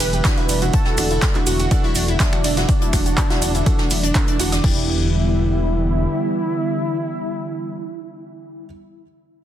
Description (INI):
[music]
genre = progressive house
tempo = 123 BPM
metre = 4/4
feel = straight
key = E minor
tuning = A4 = 440 Hz
[part]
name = wide unison lead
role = melody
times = 0.0-8.7 s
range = D4 to B4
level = -25 LUFS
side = equal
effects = analog chorus, cassette tape, sidechain pumping, digital delay
[part]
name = warm analog pad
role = sustained chords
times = 0.0-8.7 s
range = D3 to E4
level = -27 LUFS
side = equal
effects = chorus, sidechain pumping
[part]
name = analog pluck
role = arpeggios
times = 0.0-4.9 s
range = D4 to F#5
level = -28 LUFS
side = equal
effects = chorus, sidechain pumping, digital delay
[part]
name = dark detuned saw bass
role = bass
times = 0.0-6.1 s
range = E1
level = -21 LUFS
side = equal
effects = sidechain pumping
[part]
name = deep house drum kit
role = drums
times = 0.0-4.7 s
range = crash cymbal, finger snaps, handclaps, hi-hat, ride cymbal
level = -25 LUFS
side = right 1 dB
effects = overdrive
[part]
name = soft brush drum kit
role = drums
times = 0.0-4.6 s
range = hi-hat, snare drum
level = -30 LUFS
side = left 2 dB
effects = high-pass filter on hats, soft clipping on snare, high-pass filter on snare, high-pass filter on room
[part]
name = cabasa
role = percussion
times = 0.0-4.6 s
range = none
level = -31 LUFS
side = right 3 dB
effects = none
[part]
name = dark grand piano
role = stabs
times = 0.2-8.7 s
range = E3 to A4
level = -28 LUFS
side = right 4 dB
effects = sidechain pumping, digital delay
[part]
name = electronic kick drum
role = drums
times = 0.2-4.7 s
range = none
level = -19 LUFS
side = equal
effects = overdrive
[sound]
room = small room ambience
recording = dense, heavily limited modern master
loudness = -16 LUFS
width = side -11 dB against mid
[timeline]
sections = 0.0-4.6 A section; 4.6-8.5 B section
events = drop 0.0-4.6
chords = 0.0 Em7; 0.7 Dadd9/E; 4.6 Em7